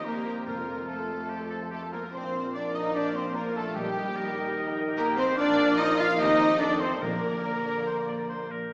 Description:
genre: classical, dramatic, fast romantic movement for symphony orchestra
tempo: 146 BPM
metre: 4/4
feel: straight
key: Bb major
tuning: A4 = 439 Hz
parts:
  - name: rich studio violin section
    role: melody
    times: 0.0-8.5 s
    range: G4 to F5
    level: -40 LUFS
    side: equal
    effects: none
  - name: clear oboe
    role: second line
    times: 0.0-8.7 s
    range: F4 to D5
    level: -39 LUFS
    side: equal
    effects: none
  - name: clear symphonic violin section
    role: second line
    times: 0.0-8.5 s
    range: G4 to F5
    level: -41 LUFS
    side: equal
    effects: none
  - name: mellow hollow silver concert flute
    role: second line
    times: 0.0-8.5 s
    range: G5 to F6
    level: -38 LUFS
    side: equal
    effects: none
  - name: dark symphonic viola section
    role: accompaniment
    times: 0.0-8.5 s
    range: D4 to G5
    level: -41 LUFS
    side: equal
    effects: none
  - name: warm French horn section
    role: sustained chords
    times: 0.0-8.5 s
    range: G3 to F4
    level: -36 LUFS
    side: equal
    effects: none
  - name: warm trombone section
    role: sustained chords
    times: 0.0-8.5 s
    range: D3 to Eb4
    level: -40 LUFS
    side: equal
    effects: none
  - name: concert harp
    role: arpeggios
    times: 0.0-8.7 s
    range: Bb2 to C6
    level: -38 LUFS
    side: equal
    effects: none
  - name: warm trumpet section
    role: stabs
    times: 0.0-8.5 s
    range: G4 to F5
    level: -37 LUFS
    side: equal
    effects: none
  - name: bright symphonic double bass section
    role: bass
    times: 0.0-8.5 s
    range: Bb1 to F2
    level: -44 LUFS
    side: equal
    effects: none
  - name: rich symphonic cello section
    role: bass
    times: 0.0-8.5 s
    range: G3 to F4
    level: -34 LUFS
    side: equal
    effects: none
  - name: timpani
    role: percussion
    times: 0.5-1.1, 3.8-4.3, 7.0-7.6 s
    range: F2 to Bb2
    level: -44 LUFS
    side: equal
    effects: none
room: wet scoring stage reverb, RT60 1.6 s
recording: heard from further back in the room, small speaker sound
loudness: -28 LUFS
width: mono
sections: 0.0-8.7 A section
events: none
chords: 0.5 F; 2.1 Bb; 3.8 Eb/Bb; 5.4 Bb; 6.2 Cm/Eb; 6.6 F13; 7.0 Bb

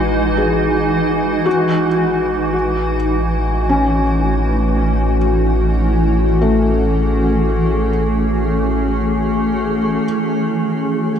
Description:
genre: ambient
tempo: free time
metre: none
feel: none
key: unclear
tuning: A4 = 440 Hz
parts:
  - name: granular cloud pad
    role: sustained chords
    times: 0.0-11.2 s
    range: E3 to B4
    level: -16 LUFS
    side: equal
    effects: built-in reverb
  - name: warm sub bass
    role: bass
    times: 0.0-10.0 s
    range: A1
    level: -20 LUFS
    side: equal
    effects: none
  - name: felt-muted upright piano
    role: arpeggios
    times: 0.4-10.1 s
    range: A3 to G#4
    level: -22 LUFS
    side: left 2 dB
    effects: tape echo
room: wet huge ambient reverb, RT60 8.5 s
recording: dark, warm production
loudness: -14 LUFS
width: side -8 dB against mid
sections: 0.0-10.0 A section; 10.0-11.2 B section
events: filter sweep on ambient pad 10.0-11.2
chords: 0.0 Emaj9/A; 1.5 F#m9/A; 10.0 Amaj7

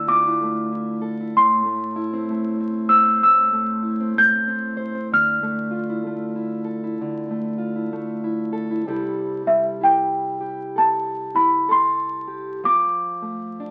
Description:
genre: acoustic folk duo or small band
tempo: 64 BPM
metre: 4/4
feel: swing 62% on 8ths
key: C major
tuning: A4 = 441 Hz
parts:
  - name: worn celesta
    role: melody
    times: 0.0-13.6 s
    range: E5 to G6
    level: -20 LUFS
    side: equal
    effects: none
  - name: fingerpicked plugged-in steel-string acoustic guitar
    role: accompaniment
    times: 0.0-13.7 s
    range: A2 to C5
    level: -28 LUFS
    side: equal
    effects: none
room: moderate studio reverb, RT60 0.8 s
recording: very old 78 rpm record, vinyl crackle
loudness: -21 LUFS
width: mono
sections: 0.0-8.9 A section; 8.9-13.7 B section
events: celesta solo 8.9-13.7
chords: 0.0 Dmadd9; 1.4 Am; 5.1 Dmadd9; 8.9 C6; 12.7 F6

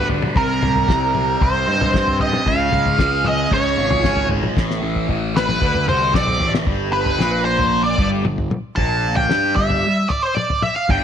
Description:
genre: psychedelic rock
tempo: 114 BPM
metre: 4/4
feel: straight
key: unclear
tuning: A4 = 440 Hz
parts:
  - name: octave-fuzz lead guitar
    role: melody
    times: 0.0-11.0 s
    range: Bb4 to A5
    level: -19 LUFS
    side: right 1 dB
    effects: wah, distortion, slapback echo
  - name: thick fuzz guitar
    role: riff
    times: 0.0-11.0 s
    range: G2 to G4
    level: -22 LUFS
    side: equal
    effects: distortion, phaser
  - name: fuzz picked electric bass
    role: bass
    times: 0.0-11.0 s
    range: G1 to G2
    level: -23 LUFS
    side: equal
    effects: overdrive
  - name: cloth-damped thuddy drum kit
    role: drums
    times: 0.1-11.0 s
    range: kick drum, snare drum, toms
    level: -21 LUFS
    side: left 2 dB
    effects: none
room: light reverb, studio reverb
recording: 1960s-style stereo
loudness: -16 LUFS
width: side -8 dB against mid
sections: 0.0-6.7 A section; 6.7-11.0 B section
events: drum fill 4.6-6.7; lead electric guitar solo 6.7-11.0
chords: 0.4 Cm; 2.5 C#; 4.6 A5; 5.6 D7; 6.7 N.C.

